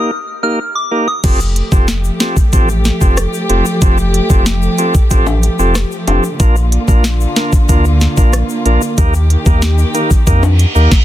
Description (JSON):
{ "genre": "dancehall", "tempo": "93 BPM", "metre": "4/4", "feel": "straight", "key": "F mixolydian", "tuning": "A4 = 440 Hz", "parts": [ { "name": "soft synth bell", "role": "melody", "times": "0.0-1.2 s", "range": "D6 to F6", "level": "-19 LUFS", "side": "equal", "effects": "chorus, phaser, ping-pong delay" }, { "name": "bright tonewheel organ", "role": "accompaniment", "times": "0.0-10.9 s", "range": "Bb3 to Bb4", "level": "-18 LUFS", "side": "right 1 dB", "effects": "stopped rotary speaker" }, { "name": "warm chamber string section", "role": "sustained chords", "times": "1.2-10.9 s", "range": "D3 to G4", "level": "-19 LUFS", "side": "equal", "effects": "sidechain pumping" }, { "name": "sub bass with octave", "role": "bass", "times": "1.2-10.9 s", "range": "F1 to F2", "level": "-13 LUFS", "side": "equal", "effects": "none" }, { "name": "island pop drum kit", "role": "drums", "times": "1.2-11.0 s", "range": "crash cymbal, hi-hat, kick drum, rim click, snare drum", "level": "-12 LUFS", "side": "equal", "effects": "overdrive" }, { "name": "egg shaker and timbales", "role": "percussion", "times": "1.2-10.9 s", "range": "none", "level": "-25 LUFS", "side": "left 8 dB", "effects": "none" }, { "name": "reverse cymbal", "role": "sound effects", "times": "10.5-11.0 s", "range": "none", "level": "-20 LUFS", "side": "right 4 dB", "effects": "none" } ], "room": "little or no reverb", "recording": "dense, heavily limited modern master", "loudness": "-10 LUFS", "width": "side -13 dB against mid", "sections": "0.0-1.2 A section; 1.2-11.0 B section", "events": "break 0.0-1.2; reverse cymbal 10.5-11.0", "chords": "0.0 Eb; 1.2 Fadd9; 6.4 Bb; 9.0 Eb" }